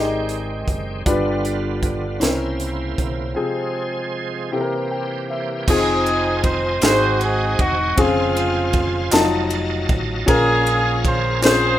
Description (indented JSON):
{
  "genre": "slow gospel",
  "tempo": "52 BPM (dotted quarters)",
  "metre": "6/8",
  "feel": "straight",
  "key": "F minor",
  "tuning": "A4 = 443 Hz",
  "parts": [
    { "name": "dark concert grand piano", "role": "accompaniment", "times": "0.0-11.8 s", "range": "G2 to A5", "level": "-22 LUFS", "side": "left 2 dB", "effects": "none" },
    { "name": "bright tonewheel organ", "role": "sustained chords", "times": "0.0-11.8 s", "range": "C3 to Bb5", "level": "-27 LUFS", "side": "right 3 dB", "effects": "slow rotary speaker, overdrive, chorus vibrato" },
    { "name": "fingered electric bass", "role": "bass", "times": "0.0-11.8 s", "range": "E1 to C2", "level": "-26 LUFS", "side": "right 1 dB", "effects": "none" },
    { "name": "crisp fusion drum kit", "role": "drums", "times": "0.3-11.6 s", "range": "crash cymbal, hi-hat, kick drum, ride cymbal, snare drum", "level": "-22 LUFS", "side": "equal", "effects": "none" },
    { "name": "mellow horn section", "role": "melody", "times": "5.7-11.8 s", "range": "Ab3 to C5", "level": "-20 LUFS", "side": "right 1 dB", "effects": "none" },
    { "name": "group handclap", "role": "percussion", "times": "6.8-11.8 s", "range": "none", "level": "-26 LUFS", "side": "right 3 dB", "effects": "none" }
  ],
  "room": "moderate studio reverb, RT60 0.6 s",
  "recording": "rough home demo mix",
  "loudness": "-17 LUFS",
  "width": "side -12 dB against mid",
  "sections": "0.0-5.7 A section; 5.7-11.8 B section",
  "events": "break 3.4-5.7; grand piano fill 4.5-5.7",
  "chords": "0.0 Abmaj7; 1.1 G7; 2.2 C7b9; 3.4 Fm/C; 4.5 C7; 5.7 Fm7; 6.8 Ab7; 8.0 Dbmaj7/F; 9.1 F7b9; 10.3 Bbm7"
}